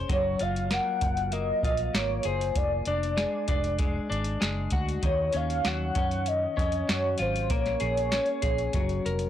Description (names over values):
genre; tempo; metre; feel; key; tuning
indie pop, bedroom pop; 97 BPM; 4/4; straight; Gb lydian; A4 = 442 Hz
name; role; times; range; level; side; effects
twelve-string electric guitar; accompaniment; 0.0-9.3 s; Eb3 to C5; -32 LUFS; left 4 dB; wide subtle chorus, warbly pitch drift
vintage muted fingered electric bass; bass; 0.0-9.3 s; F1 to Gb2; -32 LUFS; right 1 dB; tube saturation
warm velvety synth lead; melody; 0.1-9.3 s; C5 to Gb5; -29 LUFS; equal; lush chorus, tape echo
soft vintage rhythm box; drums; 0.1-9.3 s; hi-hat, kick drum, snare drum; -30 LUFS; equal; none
room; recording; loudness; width
moderate small room reverb, RT60 0.5 s; blown-out, overdriven recording, overdrive; -25 LUFS; side -10 dB against mid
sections
0.0-9.3 A section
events
none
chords
0.1 Gbmaj9; 2.6 Fm6; 5.0 Ebm9; 7.5 Bbm7; 8.7 Gbmaj7